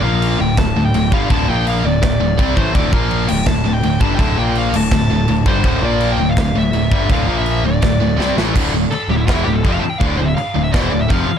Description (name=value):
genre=heavy metal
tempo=165 BPM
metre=4/4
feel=straight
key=D minor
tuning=A4 = 439 Hz
part: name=dark smooth lead guitar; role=melody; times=0.0-11.4 s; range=E4 to A5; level=-22 LUFS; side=equal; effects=overdrive, tape echo
part: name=high-gain distorted guitar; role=riff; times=0.0-11.3 s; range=D2 to C4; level=-20 LUFS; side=left 12 dB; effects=distortion
part: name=scooped high-gain guitar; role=riff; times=0.0-11.3 s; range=D2 to C4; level=-20 LUFS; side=right 11 dB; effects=distortion
part: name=fuzz picked electric bass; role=bass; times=0.0-11.3 s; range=D1 to C2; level=-20 LUFS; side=equal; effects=overdrive
part: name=tight metal drum kit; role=drums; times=0.2-11.2 s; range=china cymbal, crash cymbal, kick drum, snare drum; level=-19 LUFS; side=equal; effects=none
room=little or no reverb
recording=dark, warm production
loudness=-13 LUFS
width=side -8 dB against mid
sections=0.0-8.6 A section; 8.6-11.4 B section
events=drum fill 8.2-8.6; lead electric guitar solo 8.6-11.4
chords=0.0 Bb5; 0.4 D5; 1.5 Bb5; 1.8 D5; 2.9 Bb5; 3.3 D5; 4.4 Bb5; 4.7 D5; 5.8 Bb5; 6.2 D5; 7.3 Bb5; 7.6 D5; 8.6 Dm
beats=0.20 0.57 0.93 | 1.29 1.66 2.02 2.38 | 2.74 3.11 3.47 3.83 | 4.20 4.56 4.92 5.29 | 5.65 6.01 6.38 6.74 | 7.10 7.47 7.83 8.19 | 8.56 8.92 9.28 9.65 | 10.01 10.38 10.74 11.10